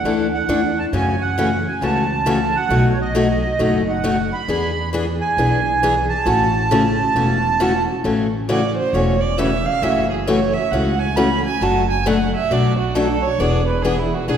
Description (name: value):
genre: acoustic string swing (jazz manouche)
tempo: 135 BPM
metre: 4/4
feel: swing 63% on 8ths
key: A major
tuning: A4 = 440 Hz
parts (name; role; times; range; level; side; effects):
- accordion; melody; 0.0-7.8 s; C#5 to B5; -20 LUFS; right 5 dB; light tremolo tuning
- upright bass; bass; 0.0-14.4 s; E1 to F#2; -23 LUFS; equal; none
- picked steel-string acoustic guitar; accompaniment; 0.1-14.4 s; B2 to A4; -19 LUFS; left 2 dB; none
- rich violin; second line; 8.5-14.4 s; E4 to B5; -21 LUFS; right 5 dB; none
room: wet concert hall reverb, RT60 1.8 s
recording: recorded in a church or concert hall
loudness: -16 LUFS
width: side -8 dB against mid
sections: 0.0-8.0 A section; 8.0-14.4 B section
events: violin solo 8.0-14.4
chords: 0.0 E9sus4; 0.9 F#m7; 2.7 B7; 4.5 E7; 6.3 A6; 9.8 F#m7; 11.6 Bm7/F#; 13.4 E7